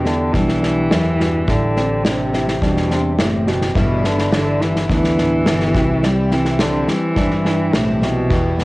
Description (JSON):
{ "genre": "indie folk with a building arrangement", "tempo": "105 BPM", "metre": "4/4", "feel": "straight", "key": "unclear", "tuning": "A4 = 440 Hz", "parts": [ { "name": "warm cello", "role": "melody", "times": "0.0-8.6 s", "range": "A2 to G3", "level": "-19 LUFS", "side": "equal", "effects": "cassette tape, tape echo" }, { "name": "fingerpicked steel-string acoustic guitar", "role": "accompaniment", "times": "0.0-8.6 s", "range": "E2 to G4", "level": "-22 LUFS", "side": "left 1 dB", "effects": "cassette tape" }, { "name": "felt-muted upright piano", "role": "arpeggios", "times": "0.0-8.6 s", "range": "B3 to F#4", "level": "-25 LUFS", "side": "right 3 dB", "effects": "cassette tape" }, { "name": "fingered electric bass", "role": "bass", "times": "0.0-8.6 s", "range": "F#1 to G2", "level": "-23 LUFS", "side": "equal", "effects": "none" }, { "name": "unplugged drum kit", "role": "drums", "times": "0.1-8.6 s", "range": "kick drum, snare drum", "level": "-21 LUFS", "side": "equal", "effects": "cassette tape" }, { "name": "picked twelve-string acoustic guitar", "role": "accompaniment", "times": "3.8-8.6 s", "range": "E2 to E4", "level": "-25 LUFS", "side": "left 2 dB", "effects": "cassette tape" } ], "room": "small room ambience", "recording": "home recording on cassette", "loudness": "-14 LUFS", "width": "side -20 dB against mid", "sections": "0.0-8.6 A section", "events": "none", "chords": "0.0 Em; 1.5 Am7; 3.8 G6; 5.8 C" }